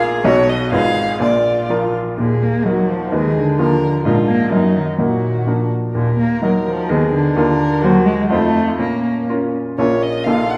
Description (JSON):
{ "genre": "quick classical-period movement for piano trio", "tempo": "126 BPM", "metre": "2/4", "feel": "straight", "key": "Eb minor", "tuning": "A4 = 442 Hz", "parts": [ { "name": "rich cello", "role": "second line", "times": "0.0-10.6 s", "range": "Bb2 to Ab4", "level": "-20 LUFS", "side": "equal", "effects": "none" }, { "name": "bright baby grand piano", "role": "accompaniment", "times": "0.0-10.6 s", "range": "Ab1 to F5", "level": "-20 LUFS", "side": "equal", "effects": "none" }, { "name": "rich violin", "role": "melody", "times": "0.2-10.6 s", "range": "Db4 to Gb5", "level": "-24 LUFS", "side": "equal", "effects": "none" } ], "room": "wet recital hall reverb, RT60 1.5 s", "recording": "dark, warm production", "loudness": "-17 LUFS", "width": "mono", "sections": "0.0-2.2 A section; 2.2-9.8 B section", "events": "none", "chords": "0.2 B; 0.7 Fdim/Ab; 1.2 Bb; 2.2 Ebm; 3.1 Abm/Eb; 3.6 Bb/Eb; 4.1 Bb7/Ab; 4.5 Ebm/Gb; 5.0 Ebm/Bb; 5.5 Bb; 6.0 Ebm; 6.9 Abm/Eb; 7.4 Bb/Eb; 7.8 Cm7b5/Eb; 8.3 F7; 8.8 Bbm", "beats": "| 0.25 0.72 | 1.21 1.70 | 2.18 2.66 | 3.13 3.59 | 4.05 4.52 | 5.00 5.47 | 5.95 6.43 | 6.90 7.36 | 7.83 8.31 | 8.79 9.29 | 9.78 10.27" }